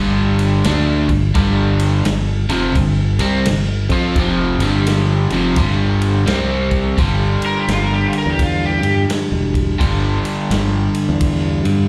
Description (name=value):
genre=blues rock power trio and southern rock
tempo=85 BPM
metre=4/4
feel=swing 63% on 8ths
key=unclear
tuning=A4 = 444 Hz
part: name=overdriven electric guitar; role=riff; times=0.0-11.9 s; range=F2 to F4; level=-21 LUFS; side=equal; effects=slapback echo
part: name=modern bright fingered electric bass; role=bass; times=0.0-11.9 s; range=E1 to G2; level=-20 LUFS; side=equal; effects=none
part: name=vintage drum kit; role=drums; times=0.4-11.8 s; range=kick drum, ride cymbal, snare drum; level=-24 LUFS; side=equal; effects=none
part: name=overdriven slide guitar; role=melody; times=7.5-9.0 s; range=F4 to Bb4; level=-22 LUFS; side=equal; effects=slapback echo
room=little or no reverb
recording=live gig heard through the venue's PA, club reverb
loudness=-17 LUFS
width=mono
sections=0.0-7.0 A section; 7.0-11.9 B section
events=electric slide guitar solo 7.0-11.9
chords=0.0 G5; 6.3 C5; 7.0 G5